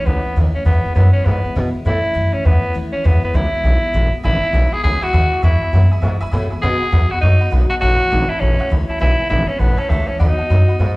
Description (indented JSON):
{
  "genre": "rockabilly",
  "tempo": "201 BPM",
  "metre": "4/4",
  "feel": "swing 62% on 8ths",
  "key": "E major",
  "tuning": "A4 = 440 Hz",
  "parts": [
    { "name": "breathy tenor saxophone", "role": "melody", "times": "0.0-11.0 s", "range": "A3 to G#4", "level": "-20 LUFS", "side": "equal", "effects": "slapback echo" },
    { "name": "picked steel-string acoustic guitar", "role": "accompaniment", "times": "0.0-11.0 s", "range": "E2 to F#4", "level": "-27 LUFS", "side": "left 2 dB", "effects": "slapback echo" },
    { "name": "upright bass", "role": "bass", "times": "0.1-11.0 s", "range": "G#1 to B2", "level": "-15 LUFS", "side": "equal", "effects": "none" },
    { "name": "honky-tonk upright piano", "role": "accompaniment", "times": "4.2-10.9 s", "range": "B4 to C#6", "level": "-31 LUFS", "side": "right 1 dB", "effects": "slapback echo" }
  ],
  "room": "studio ambience",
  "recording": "live gig heard through the venue's PA, club reverb",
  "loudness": "-13 LUFS",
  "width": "side -22 dB against mid",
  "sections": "0.0-11.0 A section",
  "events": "none",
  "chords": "0.0 A; 0.7 E; 1.9 A; 3.0 E; 6.6 B; 7.8 A; 9.0 E; 9.6 A; 10.2 B",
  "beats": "0.07 0.36 | 0.66 0.96 1.26 1.56 | 1.86 2.15 2.45 2.75 | 3.05 3.35 3.65 3.94 | 4.24 4.54 4.84 5.14 | 5.43 5.73 6.03 6.33 | 6.63 6.92 7.22 7.52 | 7.82 8.12 8.41 8.71 | 9.01 9.31 9.61 9.90 | 10.20 10.50 10.79"
}